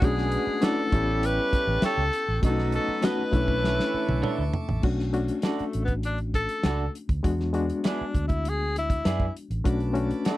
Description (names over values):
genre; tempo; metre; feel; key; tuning
lush 1970s-style soul; 100 BPM; 4/4; straight; B minor; A4 = 439 Hz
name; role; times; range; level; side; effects
breathy tenor saxophone; melody; 0.0-10.4 s; A3 to B4; -28 LUFS; left 2 dB; none
reed electric piano; accompaniment; 0.0-10.4 s; G#3 to G4; -30 LUFS; left 3 dB; fast tremolo
pipe organ, plenum; sustained chords; 0.0-4.8, 9.7-10.4 s; A4 to D6; -40 LUFS; right 3 dB; none
warm horn section; stabs; 0.0-4.5 s; E3 to G#4; -33 LUFS; right 8 dB; none
vintage muted fingered electric bass; bass; 0.0-10.1 s; A1 to F#2; -28 LUFS; equal; none
warm soul drum kit; drums; 0.0-10.4 s; crash cymbal, hi-hat, kick drum, snare drum, toms; -27 LUFS; equal; none
electric guitar through a small old amp; riff; 0.6-10.4 s; A3 to E5; -31 LUFS; right 6 dB; none
room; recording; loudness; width
little or no reverb; dry, close 1970s-style studio recording; -23 LUFS; side -16 dB against mid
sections
0.0-4.8 A section; 4.8-10.4 B section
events
drum fill 3.6-4.8; tenor saxophone solo 4.8-10.4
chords
0.0 Bm7; 0.9 A7; 2.4 B7; 3.3 Bm11; 4.8 Bm7; 7.2 E7; 9.7 Bm7